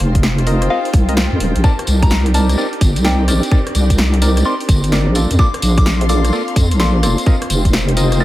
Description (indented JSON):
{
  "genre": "UK garage, two-step garage",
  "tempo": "128 BPM",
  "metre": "4/4",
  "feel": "swing 65% on 16ths",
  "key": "C dorian",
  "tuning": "A4 = 440 Hz",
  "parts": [
    { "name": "soft string machine", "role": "sustained chords", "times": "0.0-8.2 s", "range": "C4 to Bb4", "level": "-26 LUFS", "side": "equal", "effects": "ensemble chorus, sidechain pumping" },
    { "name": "deep soft wobble bass", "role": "bass", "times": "0.0-8.2 s", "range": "Eb1 to F2", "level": "-14 LUFS", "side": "equal", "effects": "chorus" },
    { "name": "punchy analog drum machine", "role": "drums", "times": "0.0-8.2 s", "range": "hi-hat, rim click, snare drum", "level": "-22 LUFS", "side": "equal", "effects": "overdrive, analog delay" },
    { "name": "rich studio string section", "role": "texture", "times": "0.0-8.2 s", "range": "Bb3 to C6", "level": "-27 LUFS", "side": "equal", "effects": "sidechain pumping" },
    { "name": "electronic kick drum", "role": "drums", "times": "0.2-7.7 s", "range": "none", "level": "-13 LUFS", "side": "equal", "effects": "none" },
    { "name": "percussive organ stab", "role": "stabs", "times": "0.5-8.2 s", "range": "Bb3 to Eb5", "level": "-23 LUFS", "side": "equal", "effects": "chorus, analog delay" },
    { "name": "soft synth bell", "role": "melody", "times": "0.7-8.2 s", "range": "F5 to A6", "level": "-24 LUFS", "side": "left 2 dB", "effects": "chorus, analog delay" },
    { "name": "tambourine", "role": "percussion", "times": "1.6-8.2 s", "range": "none", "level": "-26 LUFS", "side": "left 1 dB", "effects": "analog delay" }
  ],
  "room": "little or no reverb",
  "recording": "echo-heavy mix",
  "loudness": "-12 LUFS",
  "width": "side -15 dB against mid",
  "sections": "0.0-8.2 A section",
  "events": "none",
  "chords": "0.0 F7sus4; 1.6 Cm9; 5.2 Bbmaj7; 7.3 F7sus4",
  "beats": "0.23 0.70 1.17 | 1.64 2.11 2.58 3.05 | 3.52 3.98 4.45 4.92 | 5.39 5.86 6.33 6.80 | 7.26 7.73 8.20"
}